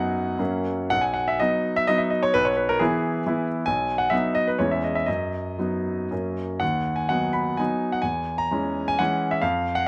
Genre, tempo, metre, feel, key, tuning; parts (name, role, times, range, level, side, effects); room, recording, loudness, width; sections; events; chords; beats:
classical, romantic triple-time dance for piano with dotted rhythms; 106-148 BPM; 3/4; rubato; B major; A4 = 440 Hz
bright grand piano; solo; 0.0-9.9 s; B1 to B5; -24 LUFS; equal
light reverb; close, detailed microphones; -24 LUFS; mono
0.9-9.9 A section
0.4 F#; 0.9 B; 2.3 E/B; 3.7 B; 4.6 C#m/E; 5.1 B/F#; 6.1 F#; 6.6 B/D#; 8.0 C#m/E
0.40 | 0.91 1.39 1.88 | 2.34 2.80 3.26 | 3.68 4.12 4.60 | 5.08 5.59 6.12 | 6.62 7.10 7.59 | 8.05 8.53 9.00 | 9.44